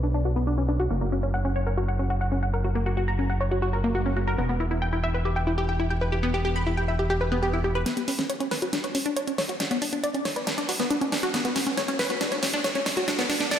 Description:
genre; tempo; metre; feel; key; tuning
uplifting trance; 138 BPM; 4/4; straight; B harmonic minor; A4 = 440 Hz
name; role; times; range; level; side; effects
wide unison pluck; arpeggios; 0.0-13.6 s; A#3 to B5; -26 LUFS; left 1 dB; tape echo
gritty driven synth bass; bass; 0.0-7.8 s; E1 to B1; -26 LUFS; equal; none
big-room dance drum kit; drums; 7.9-13.6 s; hi-hat, snare drum; -28 LUFS; right 1 dB; high-pass filter on cymbals, high-pass filter on snare, high-pass filter on hats
room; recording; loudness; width
wet lush hall reverb, RT60 1.9 s; dreamy mix soaked in reverb, low-pass filter; -23 LUFS; side -10 dB against mid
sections
0.0-7.9 A section; 7.9-13.6 B section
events
filter sweep on synth arpeggio sound 0.0-7.9, 7.9-13.6; filter sweep 0.0-7.9; build-up 7.9-13.6; drum fill 7.9-13.6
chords
0.0 Bm; 0.9 F#5; 4.4 Em; 7.9 Bmadd9

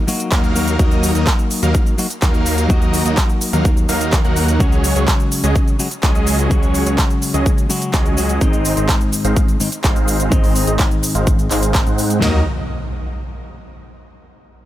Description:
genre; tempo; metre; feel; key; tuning
EDM, festival progressive house; 126 BPM; 4/4; straight; Eb dorian; A4 = 442 Hz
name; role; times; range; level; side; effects
clean electric guitar; accompaniment; 0.0-12.4 s; Ab2 to Gb4; -22 LUFS; left 3 dB; spring reverb, sidechain pumping, tape echo
downlifter and impact; sound effects; 0.0-0.8, 12.2-14.1 s; none; -28 LUFS; equal; none
big-room dance drum kit; drums; 0.1-12.2 s; cabasa, handclaps, hi-hat; -22 LUFS; right 1 dB; none
big supersaw lead; riff; 0.3-12.4 s; Gb3 to Gb5; -22 LUFS; equal; sidechain pumping, low-pass filter, tape echo
wide detuned saw bass; bass; 0.3-12.4 s; Ab1 to Ab2; -19 LUFS; equal; chorus, sidechain pumping
big-room dance drum kit; drums; 0.3-12.3 s; kick drum, snare drum, toms; -16 LUFS; equal; none
room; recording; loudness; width
digital ambience; none; -14 LUFS; side -14 dB against mid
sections
0.0-12.2 A section; 12.2-14.1 B section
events
filter sweep on supersaw synth 0.0-12.2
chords
0.0 Ebm; 4.6 Dbsus4; 8.4 Ab; 12.2 Ebm

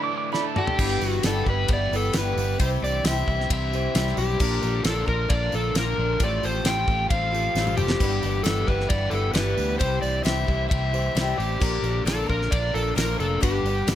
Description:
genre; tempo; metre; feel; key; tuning
folk rock and heartland rock; 133 BPM; 4/4; straight; unclear; A4 = 437 Hz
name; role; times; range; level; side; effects
pedal steel guitar; second line; 0.0-0.8 s; A5 to D6; -29 LUFS; right 8 dB; slapback echo
picked swing-style acoustic guitar; accompaniment; 0.0-13.9 s; G2 to D5; -32 LUFS; left 5 dB; none
bright tonewheel organ; sustained chords; 0.0-13.9 s; B3 to C5; -38 LUFS; right 1 dB; none
crunchy overdriven guitar; riff; 0.0-13.9 s; G2 to A4; -32 LUFS; right 1 dB; none
reed electric piano; accompaniment; 0.3-13.9 s; D4 to D5; -37 LUFS; right 5 dB; fast tremolo
damped 70s drum kit; drums; 0.3-13.9 s; crash cymbal, kick drum, ride cymbal, snare drum, toms; -27 LUFS; equal; none
overdriven slide guitar; melody; 0.6-13.9 s; G4 to G5; -27 LUFS; left 1 dB; none
fingered electric bass; bass; 0.8-13.9 s; F1 to D2; -27 LUFS; equal; none
tambourine; percussion; 0.8-13.9 s; none; -41 LUFS; right 9 dB; none
room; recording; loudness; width
little or no reverb; none; -21 LUFS; side -11 dB against mid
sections
0.8-13.9 A section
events
break 0.0-0.8; drum fill 0.3-0.8, 7.6-8.0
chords
0.0 Dsus2; 0.8 G6; 2.6 C; 4.4 Bb; 6.2 Fadd9/A; 8.0 G6; 9.8 C; 11.6 Bb; 13.4 G

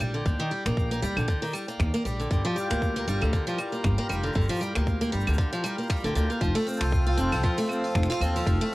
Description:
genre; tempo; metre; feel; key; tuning
folktronica; 117 BPM; 4/4; swing 56% on 16ths; F mixolydian; A4 = 440 Hz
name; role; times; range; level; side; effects
hand-pumped harmonium; sustained chords; 0.0-8.7 s; F3 to G5; -32 LUFS; left 1 dB; cassette tape
picked steel-string acoustic guitar; arpeggios; 0.0-8.7 s; D3 to F4; -29 LUFS; equal; cassette tape, analog delay
upright bass; bass; 0.0-8.6 s; F1 to Eb2; -27 LUFS; equal; none
jazz brush drum kit; drums; 0.0-8.7 s; claves, finger snaps, hi-hat, shaker; -36 LUFS; right 1 dB; cassette tape
electronic kick drum; drums; 0.3-8.6 s; none; -26 LUFS; equal; cassette tape
room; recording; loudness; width
light reverb; home recording on cassette; -24 LUFS; side -19 dB against mid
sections
0.0-6.4 A section; 6.4-8.7 B section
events
none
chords
0.0 Ebmaj7; 2.3 Gm7; 6.4 F

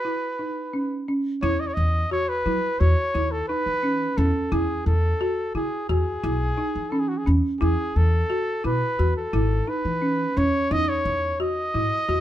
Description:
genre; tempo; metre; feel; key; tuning
progressive instrumental, progressive; 174 BPM (eighths); 9/8; straight; unclear; A4 = 441 Hz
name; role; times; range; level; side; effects
mellow trumpet; melody; 0.0-12.2 s; F#4 to D#5; -26 LUFS; equal; none
folk marimba with medium hard mallets; arpeggios; 0.0-12.2 s; C#4 to F#4; -26 LUFS; equal; none
upright bass; bass; 1.4-12.2 s; G#1 to F#3; -24 LUFS; equal; none
room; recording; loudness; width
light reverb; minimal, uncompressed stereo recording; -21 LUFS; side -12 dB against mid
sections
0.0-1.4 A section; 1.4-12.2 B section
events
break 0.0-1.4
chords
0.0 E5; 1.4 C#m11/E; 2.8 C#m11/D#; 4.5 E; 7.6 C#m7/E; 10.7 Emaj7sus2

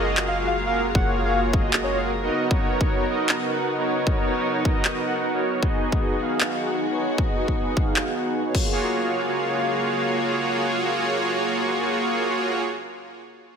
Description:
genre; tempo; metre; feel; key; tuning
future bass; 154 BPM; 4/4; swing 53% on 16ths, half-time; F# major; A4 = 440 Hz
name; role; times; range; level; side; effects
warm chamber string section; sustained chords; 0.0-12.6 s; C#3 to E#5; -33 LUFS; left 2 dB; sidechain pumping
soft supersaw; riff; 0.0-12.6 s; A#3 to F#5; -23 LUFS; right 1 dB; sidechain pumping, low-pass filter, digital delay
warm 808-style bass; bass; 0.0-2.3 s; F#1; -30 LUFS; left 1 dB; sidechain pumping
dubstep drum kit; drums; 0.2-8.6 s; crash cymbal, handclaps; -26 LUFS; equal; none
soft octave-layered synth lead; melody; 0.3-2.0 s; C#5 to F#5; -28 LUFS; left 1 dB; chorus, vintage 12-bit sampler grit, sidechain pumping, ping-pong delay
electronic kick drum; drums; 0.9-8.6 s; none; -23 LUFS; left 1 dB; none
room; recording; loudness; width
moderate lush hall reverb, RT60 1.9 s; none; -21 LUFS; side -6 dB against mid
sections
0.0-8.7 A section; 8.7-11.9 B section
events
filter sweep on supersaw synth 0.0-8.7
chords
0.0 F#maj9; 2.3 Bmaj9; 5.6 G#m7; 8.5 F#maj9

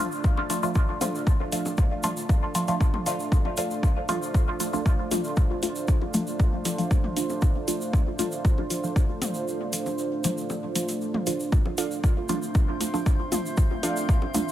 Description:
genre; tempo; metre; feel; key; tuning
dub techno; 117 BPM; 4/4; straight; D minor; A4 = 442 Hz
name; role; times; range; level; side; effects
dark analog pad; sustained chords; 0.0-14.5 s; A3 to E5; -32 LUFS; right 2 dB; chorus, sidechain pumping
filtered dub chord stab; stabs; 0.0-14.4 s; F3 to F4; -29 LUFS; equal; phaser, dub echo
tube shaker; percussion; 0.1-14.5 s; none; -36 LUFS; right 2 dB; none
electronic kick drum; drums; 0.2-14.2 s; none; -22 LUFS; equal; overdrive
electronic bongos and toms; percussion; 0.4-14.4 s; none; -36 LUFS; left 2 dB; overdrive, sidechain pumping on perc, sidechain pumping on toms, dub echo
electronic hi-hat; drums; 0.5-14.4 s; none; -33 LUFS; equal; overdrive
drifting glass-harmonics texture; texture; 12.0-14.5 s; C4 to C5; -37 LUFS; left 2 dB; chorus, built-in reverb, sidechain pumping
warbly dusty pluck; riff; 11.8-13.9 s; A4 to F5; -35 LUFS; right 3 dB; chorus, sidechain pumping, dub echo
room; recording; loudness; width
light reverb, digital ambience; none; -23 LUFS; side -12 dB against mid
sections
0.0-14.5 A section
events
filter sweep on synth stab 0.0-14.5; break 9.5-11.5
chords
0.0 Dm

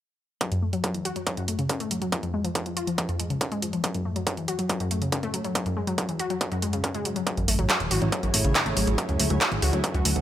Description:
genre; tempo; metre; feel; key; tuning
uplifting trance; 140 BPM; 4/4; straight; F# minor; A4 = 438 Hz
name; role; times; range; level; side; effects
wide unison pluck; arpeggios; 0.4-10.2 s; E#2 to F#4; -27 LUFS; left 2 dB; sidechain pumping, digital delay
electronic kick drum; drums; 0.4-9.9 s; none; -30 LUFS; right 1 dB; distortion, overdrive, high-pass filter on kick
techno drum kit; drums; 0.4-10.2 s; handclaps, hi-hat; -27 LUFS; right 1 dB; overdrive
shimmering ambient pad; sustained chords; 7.7-10.2 s; D3 to F#5; -32 LUFS; right 2 dB; chorus, built-in reverb, sidechain pumping
plucky analog bass; bass; 7.4-10.2 s; E1 to D2; -25 LUFS; right 1 dB; sidechain pumping
room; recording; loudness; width
light reverb, digital ambience; none; -24 LUFS; side -12 dB against mid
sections
0.4-10.2 A section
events
filter sweep on synth pluck 0.4-10.2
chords
0.4 F#m; 2.1 C#; 3.8 F#m; 5.6 Eadd9 (rootless); 7.3 Amaj7; 9.0 D

